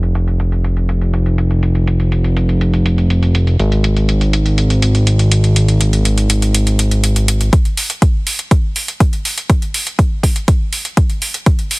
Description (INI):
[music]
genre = progressive house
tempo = 122 BPM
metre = 4/4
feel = straight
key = unclear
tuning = A4 = 440 Hz
[part]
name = fat analog bass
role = bass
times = 0.0-7.5 s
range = F1 to Ab1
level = -12 LUFS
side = equal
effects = tube saturation, sidechain pumping
[part]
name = electronic hi-hat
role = drums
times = 0.0-11.8 s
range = none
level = -20 LUFS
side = right 1 dB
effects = overdrive, sidechain pumping on hats, high-pass filter on hats, low-pass filter on hats
[part]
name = electronic kick drum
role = drums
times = 7.5-11.6 s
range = none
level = -12 LUFS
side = equal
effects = overdrive
[sound]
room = little or no reverb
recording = heavily compressed radio sound, low-pass filter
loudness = -12 LUFS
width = side -26 dB against mid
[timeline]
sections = 0.0-7.5 A section; 7.5-11.8 B section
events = filter sweep on drum 0.0-7.5; filter sweep 0.0-7.5; build-up 7.5-11.8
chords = none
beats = 0.15 0.64 1.14 | 1.63 2.12 2.61 3.10 | 3.59 4.09 4.58 5.07 | 5.56 6.05 6.54 7.04 | 7.53 8.02 8.51 9.00 | 9.50 9.99 10.48 10.97 | 11.46